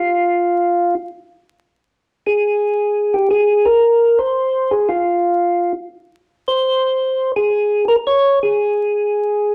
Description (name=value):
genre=jazz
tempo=113 BPM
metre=4/4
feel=swing 67% on 8ths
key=unclear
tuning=A4 = 441 Hz
part: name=percussive tonewheel organ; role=solo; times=0.0-9.5 s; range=F4 to Db5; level=-16 LUFS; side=equal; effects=slow rotary speaker
room=moderate club reverb, RT60 0.8 s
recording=vinyl crackle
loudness=-17 LUFS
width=mono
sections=0.0-9.5 A section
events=none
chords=none